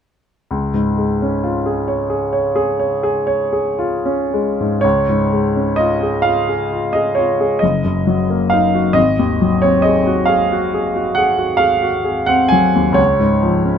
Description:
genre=classical, romantic nocturne for solo piano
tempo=36-46 BPM (dotted quarters)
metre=9/8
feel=rubato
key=Db major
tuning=A4 = 441 Hz
part: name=clear grand piano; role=solo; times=0.5-13.8 s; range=Gb1 to Ab5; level=-14 LUFS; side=equal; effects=none
room=light reverb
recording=close, detailed microphones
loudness=-14 LUFS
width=side -8 dB against mid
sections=0.5-4.8 A section; 4.8-13.8 B section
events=none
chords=0.5 Db; 7.6 Ebm/Gb; 9.0 Ab7; 13.0 Db

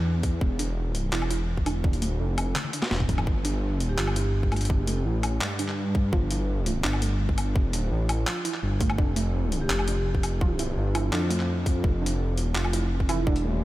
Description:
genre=half-time drum and bass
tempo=168 BPM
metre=4/4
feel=half-time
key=unclear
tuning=A4 = 444 Hz
part: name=warbly dusty pluck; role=arpeggios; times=0.0-13.6 s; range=A3 to F4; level=-33 LUFS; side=right 3 dB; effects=chorus, analog delay
part: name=dark detuned saw bass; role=bass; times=0.0-13.6 s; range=E1 to G2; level=-26 LUFS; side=equal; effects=none
part: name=boom bap sampler-style drum kit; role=drums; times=0.2-13.4 s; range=handclaps, hi-hat, snare drum, toms, woodblock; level=-32 LUFS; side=left 1 dB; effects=overdrive
part: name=electronic kick drum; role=drums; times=0.2-13.3 s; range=none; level=-25 LUFS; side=equal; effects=none
part: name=vibraphone with medium hard mallets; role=melody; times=3.9-4.4, 9.6-11.4 s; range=F4 to G4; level=-38 LUFS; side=equal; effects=vintage 12-bit sampler grit, analog delay
room=light reverb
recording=none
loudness=-24 LUFS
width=side -16 dB against mid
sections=0.0-13.6 A section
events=filter sweep on synth pluck 0.0-13.6; drum fill 2.6-3.3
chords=0.0 N.C.; 3.3 G5; 9.0 Fsus2

